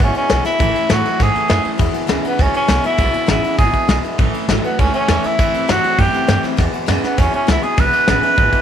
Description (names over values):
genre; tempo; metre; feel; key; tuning
rockabilly; 201 BPM; 4/4; straight; E major; A4 = 440 Hz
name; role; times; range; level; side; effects
breathy tenor saxophone; melody; 0.0-8.6 s; B3 to B4; -18 LUFS; equal; none
picked steel-string acoustic guitar; accompaniment; 0.0-8.6 s; E2 to E4; -23 LUFS; left 10 dB; none
electric guitar through a small old amp; riff; 0.0-8.6 s; E2 to F#3; -23 LUFS; right 13 dB; none
upright bass; bass; 0.0-8.6 s; G#1 to A2; -20 LUFS; right 1 dB; none
soft brush drum kit; drums; 0.0-8.6 s; kick drum, ride cymbal, snare drum; -19 LUFS; left 1 dB; none
room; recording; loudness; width
moderate spring reverb, RT60 2.4 s; 1960s-style stereo with parts hard left and right; -13 LUFS; side -9 dB against mid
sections
0.0-8.6 A section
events
none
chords
0.0 E; 0.6 A; 1.8 E; 4.2 A; 5.4 Am7; 6.6 E